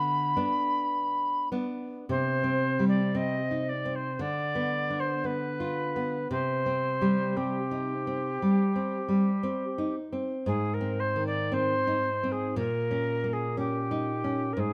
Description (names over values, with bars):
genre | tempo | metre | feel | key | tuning
romantic duo for recorder and classical guitar | 58 BPM | 4/4 | uneven beats, rubato | C minor | A4 = 441 Hz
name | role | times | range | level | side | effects
mellow alto recorder | melody | 0.0-14.7 s | G4 to B5 | -32 LUFS | equal | none
nylon-string guitar | accompaniment | 0.0-14.7 s | Ab2 to G4 | -31 LUFS | equal | none
room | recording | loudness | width
light reverb | close, detailed microphones | -29 LUFS | mono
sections
0.0-2.1 A section; 2.1-14.7 B section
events
none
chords
0.0 G; 2.1 Cm; 4.2 Dm6; 6.3 Cm; 10.5 Ab; 12.6 Eb7/Bb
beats
0.94 | 2.09 3.14 4.21 5.26 | 6.31 7.36 8.41 9.44 | 10.46 11.52 12.57 13.58 | 14.57